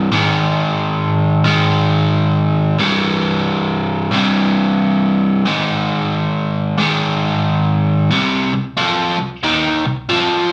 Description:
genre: rock.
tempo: 90 BPM.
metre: 4/4.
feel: swing 63% on 8ths.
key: C minor.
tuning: A4 = 440 Hz.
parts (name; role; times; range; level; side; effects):
biting overdriven guitar; solo; 0.0-10.5 s; C2 to Ab3; -16 LUFS; equal; slapback echo.
room: moderate studio reverb, RT60 0.5 s.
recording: studio ambience.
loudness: -16 LUFS.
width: mono.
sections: 0.0-8.1 A section; 8.1-10.5 B section.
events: none.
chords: 0.1 Ab5; 2.8 C5; 5.4 Ab5; 8.1 Cm.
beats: | 0.10 0.77 1.44 2.11 | 2.78 3.44 4.11 4.78 | 5.45 6.11 6.78 7.44 | 8.11 8.77 9.43 10.09.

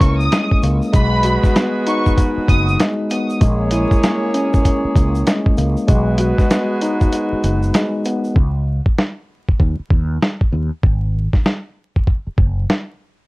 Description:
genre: hip hop, boom-bap hip-hop.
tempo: 97 BPM.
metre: 4/4.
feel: swing 63% on 16ths.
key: G# minor.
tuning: A4 = 440 Hz.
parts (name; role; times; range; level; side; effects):
warm studio violin section; melody; 0.0-2.7 s; B5 to D#6; -22 LUFS; equal; high-pass filter, low-pass filter, digital delay.
mellow tine electric piano; accompaniment; 0.0-8.4 s; G#3 to F#4; -19 LUFS; left 1 dB; medium stereo tremolo, high-pass filter, low-pass filter.
warm horn section; stabs; 0.0-8.0 s; E3 to C#5; -24 LUFS; right 1 dB; high-pass filter, low-pass filter, digital delay.
mellow fretless electric bass; bass; 0.0-12.6 s; F#1 to D#2; -18 LUFS; equal; tube saturation, lush chorus.
dusty soul sampler-style drum kit; drums; 0.0-12.9 s; hi-hat, kick drum, snare drum; -15 LUFS; equal; none.
tube shaker; percussion; 0.0-8.4 s; none; -43 LUFS; right 3 dB; none.
room: little or no reverb.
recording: worn, warbling old tape, cassette tape, vinyl crackle, warbly pitch drift.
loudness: -14 LUFS.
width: side -22 dB against mid.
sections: 0.0-8.4 A section; 8.4-13.3 B section.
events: break 7.1-8.4, 8.4-13.3.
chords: 0.0 A#m7b5; 0.9 G#m7/B; 3.4 A#m7b5; 5.9 G#m7/B; 8.4 N.C.; 10.8 F#sus2.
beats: 0.32 | 0.94 1.56 2.17 2.79 | 3.41 4.03 4.65 5.27 | 5.89 6.50 7.12 7.74 | 8.36 8.98 9.60 10.21 | 10.83 11.45 12.07 12.69.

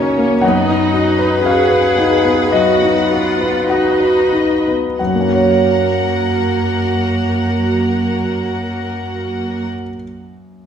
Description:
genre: classical, romantic movement for piano and orchestra.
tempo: 44-62 BPM.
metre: 4/4.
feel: rubato.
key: F# major.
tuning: A4 = 442 Hz.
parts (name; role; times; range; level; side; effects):
clear grand piano; melody; 0.0-10.7 s; F#2 to A#5; -16 LUFS; left 1 dB; none.
rich studio violin section; second line; 0.0-9.7 s; A#4 to F#5; -22 LUFS; left 5 dB; none.
rich studio viola section; accompaniment; 0.0-9.7 s; A#3 to F#4; -20 LUFS; right 2 dB; none.
rich symphonic cello section; bass; 0.0-9.7 s; F#2 to G#4; -22 LUFS; right 2 dB; none.
room: wet recital hall reverb, RT60 1.6 s.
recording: recorded in a church or concert hall.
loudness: -13 LUFS.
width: side -8 dB against mid.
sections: 0.0-5.0 A section; 5.0-9.8 B section.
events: slowing down 0.0-5.0.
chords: 0.4 B/F#; 5.0 F#.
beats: | 0.42 1.45 2.52 3.69 | 4.98 6.21 7.41 8.62.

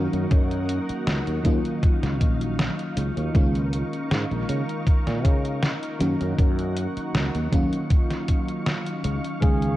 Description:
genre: vaporwave.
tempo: 79 BPM.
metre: 4/4.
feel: straight.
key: unclear.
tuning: A4 = 440 Hz.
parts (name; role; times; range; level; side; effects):
FM electric piano with soft pad layer; accompaniment; 0.0-9.8 s; Eb3 to F5; -28 LUFS; equal; tremolo, wide subtle chorus, tape echo.
soft string machine; sustained chords; 0.0-9.8 s; Gb3 to Db6; -33 LUFS; equal; ensemble chorus.
sustaining fretless electric bass; bass; 0.0-9.8 s; Bb1 to Db3; -26 LUFS; equal; tube saturation, wide subtle chorus.
detuned 8-bit digital drum machine; drums; 0.1-9.8 s; hi-hat, snare drum; -29 LUFS; equal; none.
electronic kick drum; drums; 0.3-9.6 s; none; -20 LUFS; equal; none.
breathy flugelhorn; melody; 9.4-9.8 s; Ab4; -28 LUFS; equal; vintage 12-bit sampler grit.
room: light reverb.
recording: cassette tape.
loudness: -21 LUFS.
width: side -15 dB against mid.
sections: 0.0-9.8 A section.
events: none.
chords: 0.0 Gb6; 1.4 Ebm9; 3.3 Db69; 6.0 Gb6; 7.5 Ebm9.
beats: | 0.31 1.07 1.83 2.59 | 3.35 4.11 4.87 5.63 | 6.39 7.15 7.91 8.66 | 9.43.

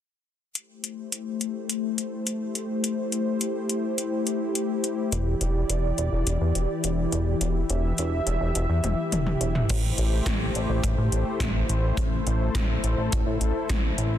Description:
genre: synthwave.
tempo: 105 BPM.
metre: 4/4.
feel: straight.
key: A minor.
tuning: A4 = 440 Hz.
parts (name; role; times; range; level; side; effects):
warm analog pad; sustained chords; 0.6-14.2 s; E3 to E5; -28 LUFS; left 2 dB; chorus, sidechain pumping.
80s electronic pad drums; drums; 0.6-14.1 s; crash cymbal, hi-hat, snare drum, toms; -29 LUFS; left 1 dB; gated reverb on snare and toms, overdrive.
chorused synth bass; bass; 5.1-14.2 s; E1 to A2; -25 LUFS; equal; none.
kick drum; drums; 9.7-13.8 s; none; -29 LUFS; equal; none.
room: light reverb.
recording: dense, heavily limited modern master.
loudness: -23 LUFS.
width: side -10 dB against mid.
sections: 0.6-9.7 A section; 9.7-14.2 B section.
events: filter sweep on analog synth pad 0.6-9.7; drum fill 8.8-9.7.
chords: 0.6 Am7; 5.1 Em7; 9.7 Am7.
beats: | 0.55 1.12 1.70 2.27 | 2.84 3.41 3.98 4.55 | 5.12 5.70 6.27 6.84 | 7.41 7.98 8.55 9.12 | 9.70 10.27 10.84 11.41 | 11.98 12.55 13.12 13.70.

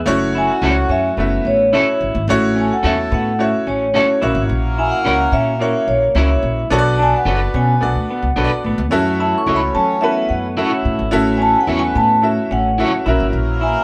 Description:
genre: soul.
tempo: 109 BPM.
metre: 4/4.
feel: straight.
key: unclear.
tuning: A4 = 440 Hz.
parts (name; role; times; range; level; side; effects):
bright grand piano; accompaniment; 0.0-13.7 s; A3 to E5; -22 LUFS; equal; none.
percussive tonewheel organ; sustained chords; 0.0-0.1, 8.9-13.8 s; E3 to F#4; -30 LUFS; equal; stopped rotary speaker.
mellow horn section; second line; 0.1-13.8 s; F#3 to C#5; -29 LUFS; equal; none.
upright bass; bass; 0.1-13.7 s; F#1 to F#3; -22 LUFS; equal; none.
electric guitar through a small old amp; riff; 0.3-13.8 s; A#3 to E4; -27 LUFS; equal; none.
vibraphone with soft mallets; melody; 0.4-13.8 s; C#5 to C#6; -20 LUFS; equal; none.
electric guitar at the edge of break-up; stabs; 0.6-12.9 s; C#4 to C#5; -23 LUFS; equal; tremolo.
room: moderate small room reverb, RT60 0.5 s.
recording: band playing live in one room.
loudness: -16 LUFS.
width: mono.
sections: 0.1-13.8 A section.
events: none.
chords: 0.1 F#m7; 2.3 A6; 4.2 F#7; 6.7 Bm7; 8.9 F#m7; 11.1 A6; 13.1 F#7.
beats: | 0.07 0.63 1.18 1.73 | 2.29 2.84 3.39 3.95 | 4.50 5.05 5.60 6.16 | 6.71 7.26 7.81 8.37 | 8.92 9.47 10.02 10.58 | 11.13 11.68 12.23 12.79 | 13.34.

